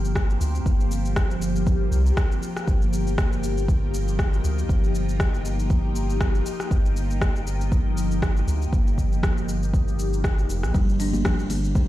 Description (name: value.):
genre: afro house.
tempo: 119 BPM.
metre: 4/4.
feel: swing 56% on 16ths.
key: unclear.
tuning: A4 = 440 Hz.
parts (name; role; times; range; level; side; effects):
ethereal airy pad; sustained chords; 0.0-11.9 s; F3 to G4; -29 LUFS; equal; ensemble chorus, built-in reverb, phaser, sidechain pumping.
round analog bass; bass; 0.0-11.9 s; F1 to D2; -25 LUFS; equal; tube saturation, sidechain pumping.
afro-pop drum kit; drums; 0.0-11.9 s; cabasa, hi-hat, rim click; -32 LUFS; left 1 dB; none.
electronic kick drum; drums; 0.2-11.9 s; none; -23 LUFS; equal; none.
buzzing kalimba; arpeggios; 10.7-11.9 s; D3 to D4; -26 LUFS; equal; sidechain pumping, ping-pong delay.
congas; percussion; 10.7-11.9 s; none; -30 LUFS; left 1 dB; none.
room: little or no reverb.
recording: played on a big sound system in a bare room, stone room reverb.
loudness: -20 LUFS.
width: side -14 dB against mid.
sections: 0.0-11.9 A section.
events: none.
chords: 0.0 Gm7; 2.7 Ebadd9/G; 10.7 Gm7.